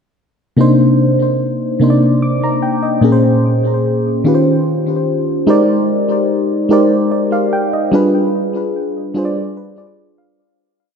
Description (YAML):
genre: R&B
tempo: 49 BPM (dotted quarters)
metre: 6/8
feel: straight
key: C minor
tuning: A4 = 440 Hz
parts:
  - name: mellow FM electric piano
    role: solo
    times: 0.6-10.6 s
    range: Bb2 to D6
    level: -12 LUFS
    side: equal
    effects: chorus, ping-pong delay
room: wet lush hall reverb, RT60 2.2 s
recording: dreamy mix soaked in reverb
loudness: -12 LUFS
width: side -6 dB against mid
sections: 0.6-10.4 verse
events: fade-out 7.9-10.4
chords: 0.6 Cm9; 3.0 Bbm9; 4.2 Eb13; 5.5 Abmaj9#11; 7.9 G7b9